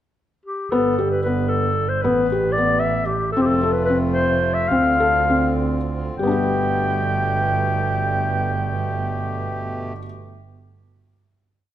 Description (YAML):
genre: contemporary instrumental, chamber music in an uneven meter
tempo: 192-227 BPM (eighths)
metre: 5/8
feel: straight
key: G mixolydian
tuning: A4 = 440 Hz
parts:
  - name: breathy clarinet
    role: melody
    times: 0.5-9.9 s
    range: G4 to G5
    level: -22 LUFS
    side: left 2 dB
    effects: none
  - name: felt-muted upright piano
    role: arpeggios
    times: 0.7-10.0 s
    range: G3 to A4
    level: -22 LUFS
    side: left 3 dB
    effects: none
  - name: warm double bass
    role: bass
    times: 0.7-9.9 s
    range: F1 to D2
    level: -25 LUFS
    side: right 5 dB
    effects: none
  - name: pedal harmonium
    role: sustained chords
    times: 3.4-9.9 s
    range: B2 to G4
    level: -29 LUFS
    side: equal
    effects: none
room: moderate recital hall reverb, RT60 1.6 s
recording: none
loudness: -18 LUFS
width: side -11 dB against mid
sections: 0.0-0.7 pickup bar; 0.7-6.2 A section; 6.2-9.3 final chord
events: slowing down 3.4-6.2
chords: 0.0 N.C.; 0.7 G; 2.0 Asus2; 3.4 F; 4.7 Dm7; 6.2 Gadd9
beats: 0.18 0.45 | 0.71 0.98 1.25 1.51 1.78 | 2.04 2.31 2.57 2.84 3.10 | 3.37 3.63 3.90 4.17 4.44 | 4.72 5.00 5.28 5.58 5.88 | 6.18 6.49 6.80 7.12 7.43 | 7.74 8.05 8.37 8.68 8.99